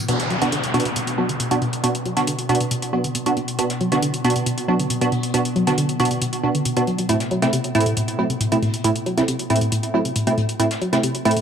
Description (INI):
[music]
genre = driving peak-time techno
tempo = 137 BPM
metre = 4/4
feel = straight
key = B phrygian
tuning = A4 = 440 Hz
[part]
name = metallic inharmonic drone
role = drone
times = 0.0-11.4 s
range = B2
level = -29 LUFS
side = left 1 dB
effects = chorus, built-in reverb
[part]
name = woody wave-folded pluck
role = riff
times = 0.1-11.4 s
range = A2 to F#3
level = -23 LUFS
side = left 1 dB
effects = chorus, cassette tape, tape echo
[part]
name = wavetable chord stab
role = stabs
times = 0.1-11.3 s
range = A3 to F#4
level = -22 LUFS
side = right 2 dB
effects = tape echo
[part]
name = electronic hi-hat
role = drums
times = 0.1-11.4 s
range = none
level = -28 LUFS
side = left 2 dB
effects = none
[part]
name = jazz brush drum kit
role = drums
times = 0.1-11.4 s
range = hi-hat, snare drum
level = -37 LUFS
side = left 3 dB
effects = high-pass filter on hats, low-pass filter on hats, high-pass filter on snare, low-pass filter on snare, high-pass filter on room, low-pass filter on room
[part]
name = downlifter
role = sound effects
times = 0.1-3.6 s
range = none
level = -27 LUFS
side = left 1 dB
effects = none
[sound]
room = moderate lush hall reverb, RT60 1.8 s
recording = dry, gritty hardware recording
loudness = -18 LUFS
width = side -8 dB against mid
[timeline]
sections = 0.1-11.4 A section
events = filter sweep on synth arpeggio sound 0.1-11.4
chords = 0.1 Bm; 7.1 Am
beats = | 0.09 0.52 0.96 1.40 | 1.84 2.27 2.71 3.15 | 3.59 4.03 4.46 4.90 | 5.34 5.78 6.22 6.66 | 7.09 7.53 7.97 8.41 | 8.84 9.28 9.72 10.16 | 10.60 11.03